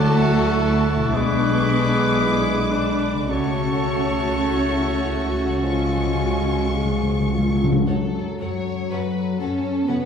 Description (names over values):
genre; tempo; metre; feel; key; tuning
classical, slow romantic movement for symphony orchestra; 50-65 BPM; 4/4; rubato; F# minor; A4 = 440 Hz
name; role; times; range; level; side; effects
rich studio violin section; melody; 0.0-10.1 s; A4 to D6; -30 LUFS; left 3 dB; none
hollow concert flute; second line; 0.0-7.5 s; G#5 to D6; -33 LUFS; left 2 dB; none
warm oboe; second line; 0.0-6.7 s; F#4 to B4; -32 LUFS; right 1 dB; none
warm studio violin section; second line; 0.0-10.0 s; D4 to F#5; -32 LUFS; left 4 dB; none
mellow bassoon; accompaniment; 0.0-7.5 s; E#3 to A3; -32 LUFS; right 2 dB; none
rich studio viola section; accompaniment; 0.0-10.0 s; G#3 to A4; -31 LUFS; equal; none
clear trombone section; sustained chords; 0.0-7.5 s; C#3 to A3; -32 LUFS; right 2 dB; none
mellow French horn section; sustained chords; 0.0-10.1 s; F#3 to G#4; -28 LUFS; left 3 dB; none
concert harp; arpeggios; 0.0-10.1 s; F#2 to A4; -29 LUFS; left 7 dB; none
dark trumpet section; stabs; 0.0-6.8 s; A4 to D5; -28 LUFS; right 2 dB; none
rich studio cello section; bass; 0.0-10.1 s; F#3 to D4; -25 LUFS; right 2 dB; none
warm studio double bass section; bass; 0.0-10.0 s; B1 to F#2; -26 LUFS; right 1 dB; none
timpani; percussion; 5.6-7.8 s; C#3; -23 LUFS; left 2 dB; none
room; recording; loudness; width
wet scoring stage reverb, RT60 1.6 s; heard from further back in the room; -18 LUFS; side -7 dB against mid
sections
0.0-7.9 A section; 7.9-10.1 B section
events
timpani fill 5.6-7.9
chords
0.0 D; 1.1 G#dim/B; 3.3 F#m/C#; 5.6 C#; 7.9 F#m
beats
0.17 1.14 2.17 | 3.30 4.49 5.63 6.76 | 7.87 8.92 9.88